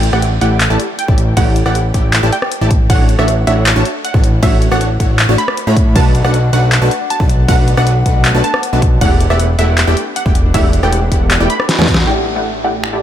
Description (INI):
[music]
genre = future bass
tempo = 157 BPM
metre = 4/4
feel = half-time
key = D major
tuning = A4 = 440 Hz
[part]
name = supersaw stab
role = riff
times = 0.0-13.0 s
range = A3 to B5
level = -18 LUFS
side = right 1 dB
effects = lush chorus, sidechain pumping, low-pass filter
[part]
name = fat analog bass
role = bass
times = 0.0-13.0 s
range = E1 to A2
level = -14 LUFS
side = equal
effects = sidechain pumping
[part]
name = dubstep drum kit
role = drums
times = 0.0-12.9 s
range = crash cymbal, finger snaps, handclaps, hi-hat, rim click, snare drum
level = -18 LUFS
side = left 1 dB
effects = none
[part]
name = wide unison pluck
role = melody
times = 0.1-12.8 s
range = E5 to B5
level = -21 LUFS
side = right 1 dB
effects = sidechain pumping, ping-pong delay
[part]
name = electronic kick drum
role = drums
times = 1.1-12.0 s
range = none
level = -13 LUFS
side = equal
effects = none
[part]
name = concert harp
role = arpeggios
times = 6.0-13.0 s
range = B3 to F#5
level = -25 LUFS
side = left 6 dB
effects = sidechain pumping, ping-pong delay
[part]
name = bright grand piano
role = accompaniment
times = 12.1-13.0 s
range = A3 to D5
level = -30 LUFS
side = left 3 dB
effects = none
[sound]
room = digital ambience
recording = none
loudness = -10 LUFS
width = side -10 dB against mid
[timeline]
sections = 0.0-12.1 A section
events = drop 0.0-12.1; drum fill 11.7-12.1; band accent 11.9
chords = 0.0 A7sus4; 2.9 Dmaj7/A; 6.0 Bm7; 9.0 Em11; 12.1 A7sus4